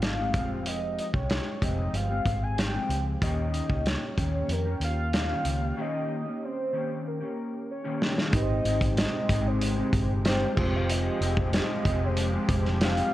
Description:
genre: indie pop, bedroom pop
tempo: 94 BPM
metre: 4/4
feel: straight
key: Ab major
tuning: A4 = 440 Hz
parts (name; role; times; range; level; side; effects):
- soft octave-layered synth lead; melody; 0.0-13.1 s; Bb4 to Ab5; -33 LUFS; equal; phaser, wide subtle chorus, analog delay
- mellow electric guitar; accompaniment; 0.0-13.1 s; Eb3 to G4; -32 LUFS; left 1 dB; analog chorus, vibrato effect
- vintage muted fingered electric bass; bass; 0.0-13.0 s; F1 to F2; -29 LUFS; equal; none
- loose indie drum kit; drums; 0.0-13.1 s; crash cymbal, hi-hat, kick drum, snare drum; -28 LUFS; equal; none
- reed electric piano; accompaniment; 8.3-13.1 s; Ab3 to C5; -36 LUFS; right 3 dB; cassette tape
- lush unison pad; sustained chords; 8.9-13.1 s; C3 to G4; -36 LUFS; equal; chorus, phaser
room: small room ambience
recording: cassette tape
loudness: -25 LUFS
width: side -14 dB against mid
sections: 0.0-8.3 A section; 8.3-13.1 B section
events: break 5.8-8.3; drum fill 7.1-8.3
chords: 0.3 Fmadd9; 3.2 Eb7; 8.3 Abmaj7; 10.6 Fmadd9

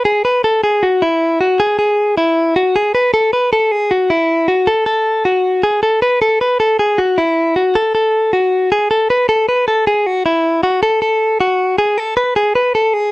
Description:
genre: indie pop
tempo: 156 BPM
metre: 4/4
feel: straight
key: unclear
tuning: A4 = 439 Hz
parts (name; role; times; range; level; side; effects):
- direct-recorded clean electric guitar; solo; 0.0-13.1 s; E4 to B4; -12 LUFS; equal; vibrato effect, slapback echo
room: little or no reverb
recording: dry, close 1970s-style studio recording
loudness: -12 LUFS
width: side -20 dB against mid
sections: 0.0-13.1 A section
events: none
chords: none

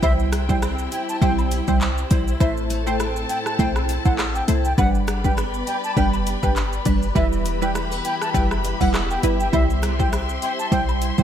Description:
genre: dancehall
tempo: 101 BPM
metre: 4/4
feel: swing 56% on 16ths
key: unclear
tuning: A4 = 440 Hz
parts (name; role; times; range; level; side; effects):
- bright reedy baroque flute; melody; 0.0-11.2 s; E5 to A5; -27 LUFS; equal; ping-pong delay
- punchy chord stab; accompaniment; 0.0-11.2 s; G3 to C5; -25 LUFS; right 3 dB; chorus, sidechain pumping
- warm studio string section; sustained chords; 0.0-11.2 s; E4 to C6; -30 LUFS; left 3 dB; sidechain pumping
- picked steel-string acoustic guitar; arpeggios; 0.0-11.2 s; A2 to E4; -32 LUFS; left 1 dB; ensemble chorus, ping-pong delay
- clean 808-style bass; bass; 0.0-11.2 s; E1 to C2; -24 LUFS; equal; none
- afro-pop drum kit; drums; 0.0-11.2 s; handclaps, hi-hat, kick drum, rim click, shaker; -24 LUFS; equal; gated reverb
- woodblock and cabasa; percussion; 0.0-11.2 s; none; -36 LUFS; left 2 dB; none
room: light reverb, small room ambience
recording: bright 1980s-style digital production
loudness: -18 LUFS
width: side -9 dB against mid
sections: 0.0-11.2 A section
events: none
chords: 0.0 C; 2.4 Am; 4.8 G; 7.2 Em; 9.5 C

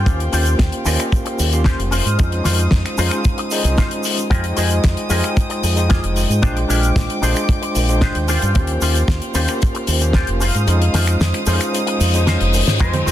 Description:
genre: nu-disco, nu disco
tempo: 113 BPM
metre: 4/4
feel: straight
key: unclear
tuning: A4 = 440 Hz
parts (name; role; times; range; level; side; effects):
- warm studio violin section; sustained chords; 0.0-13.1 s; Ab3 to Eb6; -27 LUFS; equal; sidechain pumping
- electric guitar with an envelope filter; riff; 0.0-13.1 s; Db4 to Eb5; -26 LUFS; left 2 dB; ensemble chorus, ping-pong delay
- fingered electric bass with an envelope filter; bass; 0.0-13.1 s; F1 to Ab2; -18 LUFS; equal; none
- overdriven tine electric piano; accompaniment; 0.1-13.1 s; Ab3 to C6; -23 LUFS; equal; medium tremolo, sidechain pumping, ping-pong delay
- damped 70s drum kit; drums; 0.1-13.1 s; crash cymbal, finger snaps, hi-hat, shaker, snare drum; -23 LUFS; left 2 dB; none
- kick drum; drums; 0.1-12.9 s; none; -16 LUFS; equal; none
- reverse cymbal; sound effects; 11.9-12.8 s; none; -26 LUFS; left 4 dB; none
- wide unison lead; melody; 12.8-13.1 s; C5; -24 LUFS; right 1 dB; cassette tape
- maracas and congas; percussion; 12.8-13.1 s; none; -23 LUFS; right 4 dB; none
room: light reverb, small room ambience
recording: dense, heavily limited modern master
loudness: -15 LUFS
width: side -12 dB against mid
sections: 0.0-13.1 A section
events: kick drops out 10.7-12.8; reverse cymbal 11.9-12.8; drum fill 12.3-12.8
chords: 0.0 Eb13; 1.9 Dbmaj9/F; 4.3 Fm9; 6.4 Bb13; 8.3 Eb13; 10.4 Dbmaj9/F

